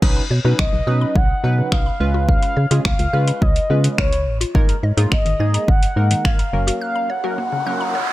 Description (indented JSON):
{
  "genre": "dance-pop",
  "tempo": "106 BPM",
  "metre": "4/4",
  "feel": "straight",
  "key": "unclear",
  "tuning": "A4 = 440 Hz",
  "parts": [
    { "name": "funky polysynth comp", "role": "accompaniment", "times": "0.0-7.9 s", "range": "F#3 to B4", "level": "-26 LUFS", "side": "right 2 dB", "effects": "chorus, sidechain pumping" },
    { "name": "mallet-like synth pluck", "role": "arpeggios", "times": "0.0-8.1 s", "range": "C#3 to G#6", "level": "-30 LUFS", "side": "left 4 dB", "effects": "chorus, sidechain pumping, dub echo" },
    { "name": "organ-like FM bass", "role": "bass", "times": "0.0-6.7 s", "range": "F#1 to C#3", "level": "-18 LUFS", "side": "equal", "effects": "sidechain pumping" },
    { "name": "deep house drum kit", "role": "drums", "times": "0.0-6.8 s", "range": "crash cymbal, finger snaps, hi-hat, kick drum", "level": "-18 LUFS", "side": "equal", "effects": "none" },
    { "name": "mellow horn-like synth lead", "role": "melody", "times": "0.6-8.1 s", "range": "C#5 to F#5", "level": "-23 LUFS", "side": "left 1 dB", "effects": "chorus" },
    { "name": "riser", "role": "sound effects", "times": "7.1-8.1 s", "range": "none", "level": "-26 LUFS", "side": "right 2 dB", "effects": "none" }
  ],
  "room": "digital ambience",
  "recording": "none",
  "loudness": "-16 LUFS",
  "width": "side -16 dB against mid",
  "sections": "0.0-8.1 A section",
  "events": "break 6.8-8.1; riser 7.1-8.1",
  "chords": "0.0 Badd9; 2.0 C#7; 4.6 G#sus2; 6.5 F#"
}